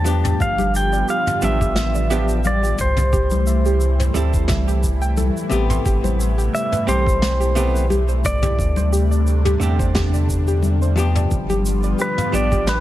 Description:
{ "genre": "sunset chillout", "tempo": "88 BPM", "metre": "4/4", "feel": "swing 54% on 16ths", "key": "unclear", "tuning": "A4 = 443 Hz", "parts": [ { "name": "pedal steel guitar", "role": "melody", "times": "0.0-12.8 s", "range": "B4 to A5", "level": "-23 LUFS", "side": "equal", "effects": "digital delay" }, { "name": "hollow-body jazz guitar", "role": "accompaniment", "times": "0.0-12.8 s", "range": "C3 to A4", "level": "-26 LUFS", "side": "moving between left 5 dB and right 6 dB", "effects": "auto-pan, vintage 12-bit sampler grit, digital delay" }, { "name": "lush unison pad", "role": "sustained chords", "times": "0.0-12.8 s", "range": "C3 to G4", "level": "-26 LUFS", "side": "left 1 dB", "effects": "chorus, phaser, vintage 12-bit sampler grit" }, { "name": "soft round pluck", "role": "arpeggios", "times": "0.0-12.6 s", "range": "G4 to C6", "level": "-28 LUFS", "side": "right 1 dB", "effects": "chorus, digital delay" }, { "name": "warm sub bass", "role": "bass", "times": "0.0-12.8 s", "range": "G1 to E2", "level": "-19 LUFS", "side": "equal", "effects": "none" }, { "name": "vintage brush drum kit", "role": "drums", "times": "0.1-12.8 s", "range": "shaker, snare drum, toms", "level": "-27 LUFS", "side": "equal", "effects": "none" }, { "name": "electronic kick drum", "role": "drums", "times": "0.4-12.6 s", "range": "none", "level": "-23 LUFS", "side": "equal", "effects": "none" }, { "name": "congas", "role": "percussion", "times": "0.6-12.5 s", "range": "none", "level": "-29 LUFS", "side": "left 4 dB", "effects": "none" } ], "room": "light reverb, studio reverb", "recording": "none", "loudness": "-16 LUFS", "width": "side -14 dB against mid", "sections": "0.0-12.8 A section", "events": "none", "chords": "0.4 G7; 2.8 C6; 5.9 Am9; 8.6 D7sus4; 11.3 G7" }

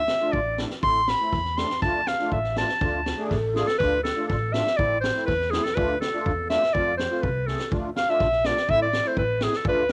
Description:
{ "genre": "klezmer", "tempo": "122 BPM", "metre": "2/4", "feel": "straight", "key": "D dorian sharp4", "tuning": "A4 = 440 Hz", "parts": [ { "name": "bright clarinet", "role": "melody", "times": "0.0-9.9 s", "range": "G#4 to C6", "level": "-26 LUFS", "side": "equal", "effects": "plate reverb" }, { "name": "upright bass", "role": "bass", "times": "0.0-9.9 s", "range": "A1 to F2", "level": "-34 LUFS", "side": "equal", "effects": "none" }, { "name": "street-band drum kit", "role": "drums", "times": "0.1-9.9 s", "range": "kick drum, snare drum", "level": "-33 LUFS", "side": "equal", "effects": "cassette tape" }, { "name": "musette accordion", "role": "accompaniment", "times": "0.2-9.8 s", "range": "A3 to G#4", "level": "-34 LUFS", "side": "equal", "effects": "cassette tape, plate reverb" }, { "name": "breathy mellow long shakuhachi", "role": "second line", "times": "3.1-3.8 s", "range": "F4 to A4", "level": "-32 LUFS", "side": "equal", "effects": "cassette tape, plate reverb" } ], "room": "moderate booth ambience, RT60 0.2 s", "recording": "home recording on cassette", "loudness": "-24 LUFS", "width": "mono", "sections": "0.0-3.8 A section; 3.8-9.9 B section", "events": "speeding up 0.0-9.9; clarinet solo 0.0-3.8; drum fill 3.3-3.8, 7.5", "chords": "0.0 Dm; 0.8 Am; 1.8 Dm; 4.8 Am; 5.8 Dm; 6.7 F; 7.7 Dm; 8.7 Am" }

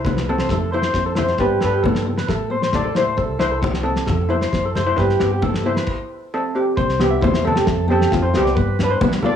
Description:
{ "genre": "highlife guitar band", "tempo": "134 BPM", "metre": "4/4", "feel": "straight", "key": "C major", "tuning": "A4 = 440 Hz", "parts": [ { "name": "steel pan", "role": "melody", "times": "0.0-9.4 s", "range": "B3 to D5", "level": "-22 LUFS", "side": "equal", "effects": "cassette tape" }, { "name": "electric guitar through a small old amp", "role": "arpeggios", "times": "0.0-9.3 s", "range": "F4 to E5", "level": "-23 LUFS", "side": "right 1 dB", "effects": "spring reverb, tape echo" }, { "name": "upright bass", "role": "bass", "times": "0.0-9.4 s", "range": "C2 to G3", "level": "-23 LUFS", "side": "equal", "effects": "none" }, { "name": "cloth-damped thuddy drum kit", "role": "drums", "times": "0.0-9.2 s", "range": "crash cymbal, kick drum, snare drum", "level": "-24 LUFS", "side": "equal", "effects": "cassette tape" }, { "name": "fingerpicked steel-string acoustic guitar", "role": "accompaniment", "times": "0.1-9.4 s", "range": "A3 to E4", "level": "-28 LUFS", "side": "left 6 dB", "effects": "none" }, { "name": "congas", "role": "percussion", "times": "0.1-9.3 s", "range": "none", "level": "-25 LUFS", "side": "left 3 dB", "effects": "none" } ], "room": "moderate small room reverb, RT60 0.6 s", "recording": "home recording on cassette, small room ambience", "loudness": "-16 LUFS", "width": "side -8 dB against mid", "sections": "0.0-6.8 A section; 6.8-9.4 B section", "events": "stop 5.9-6.8", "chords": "0.5 F; 1.4 G; 2.3 Am; 3.2 C; 4.1 F; 5.0 G; 5.9 C6; 6.8 C; 7.7 F; 8.6 G" }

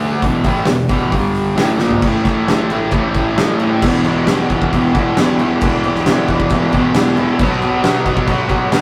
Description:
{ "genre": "garage rock duo or trio", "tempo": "134 BPM", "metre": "4/4", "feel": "straight", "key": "unclear", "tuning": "A4 = 444 Hz", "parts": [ { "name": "fuzz guitar", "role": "riff", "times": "0.0-8.8 s", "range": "E2 to D4", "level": "-17 LUFS", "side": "equal", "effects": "distortion" }, { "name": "oversized low-tuned drum kit", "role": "drums", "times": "0.0-8.8 s", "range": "crash cymbal, hi-hat, kick drum, ride cymbal, snare drum, toms", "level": "-20 LUFS", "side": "equal", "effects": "none" } ], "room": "wet studio ambience, RT60 0.5 s", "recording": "rough rehearsal-room recording", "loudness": "-15 LUFS", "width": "mono", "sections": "0.0-2.0 A section; 2.0-3.8 B section; 3.8-8.8 C section", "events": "drum fill 1.8", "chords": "0.2 E5; 1.1 G5; 1.6 Fadd11/A; 2.0 A5; 3.8 E5; 7.4 B5" }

